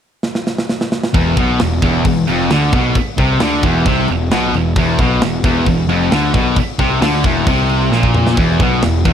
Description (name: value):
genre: heavy metal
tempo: 133 BPM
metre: 4/4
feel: straight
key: unclear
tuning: A4 = 439 Hz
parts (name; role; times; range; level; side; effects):
- tight metal drum kit; drums; 0.2-9.1 s; crash cymbal, kick drum, snare drum, toms; -18 LUFS; right 1 dB; none
- heavy high-gain guitar; riff; 1.1-9.1 s; E2 to D3; -20 LUFS; right 13 dB; distortion
- high-gain distorted guitar; riff; 1.1-9.1 s; E2 to D3; -18 LUFS; left 8 dB; distortion
- sludgy distorted guitar; riff; 1.1-9.1 s; E2 to D3; -18 LUFS; right 1 dB; overdrive
- fuzz picked electric bass; bass; 1.1-9.1 s; E1 to D2; -20 LUFS; equal; overdrive
room: light reverb, small room ambience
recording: none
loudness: -12 LUFS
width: side -8 dB against mid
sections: 0.0-1.1 A section; 1.1-9.1 B section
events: drum fill 0.2-1.1, 7.9-8.4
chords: 0.0 N.C.; 1.1 E5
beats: 0.23 0.69 | 1.14 1.59 2.04 2.50 | 2.95 3.40 3.86 4.31 | 4.76 5.21 5.67 6.12 | 6.57 7.02 7.47 7.93 | 8.38 8.83